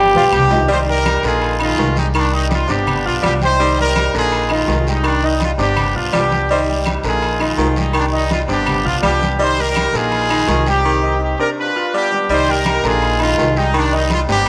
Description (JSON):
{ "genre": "latin, salsa", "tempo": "165 BPM", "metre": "4/4", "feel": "straight", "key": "C minor", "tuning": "A4 = 443 Hz", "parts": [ { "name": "bright trombone", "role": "melody", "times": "0.0-0.7 s", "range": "G4", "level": "-17 LUFS", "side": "equal", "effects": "none" }, { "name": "clear baby grand piano", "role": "accompaniment", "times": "0.0-14.5 s", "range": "Eb3 to F6", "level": "-24 LUFS", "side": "equal", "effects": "none" }, { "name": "upright bass", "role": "bass", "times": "0.0-14.5 s", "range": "G1 to C2", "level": "-23 LUFS", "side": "equal", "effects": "none" }, { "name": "congas", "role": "percussion", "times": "0.1-14.5 s", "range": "none", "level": "-28 LUFS", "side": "equal", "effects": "none" }, { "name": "timbales and agogo bells", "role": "percussion", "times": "0.1-14.5 s", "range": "none", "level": "-29 LUFS", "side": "equal", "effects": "none" }, { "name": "brilliant horn section", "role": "melody", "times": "0.2-14.5 s", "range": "G3 to C5", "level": "-20 LUFS", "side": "equal", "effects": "none" }, { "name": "claves", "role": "percussion", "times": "0.3-10.5 s", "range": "none", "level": "-33 LUFS", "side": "equal", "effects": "none" }, { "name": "guiro", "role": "percussion", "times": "0.3-14.5 s", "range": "none", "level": "-33 LUFS", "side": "equal", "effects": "none" }, { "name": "warm baritone saxophone", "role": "second line", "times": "0.7-14.5 s", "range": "C3 to G3", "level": "-24 LUFS", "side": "equal", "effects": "none" } ], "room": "moderate plate reverb, RT60 2.8 s", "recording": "none", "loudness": "-16 LUFS", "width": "mono", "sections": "0.7-12.3 A section; 12.3-14.5 A section", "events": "drum fill 0.0-0.7", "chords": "0.0 G; 0.7 Cm; 2.9 G7; 3.6 Cm; 5.8 G7; 6.5 Cm; 8.7 G7; 9.4 Bb7sus4; 10.8 Cm; 11.6 G7; 12.3 Cm" }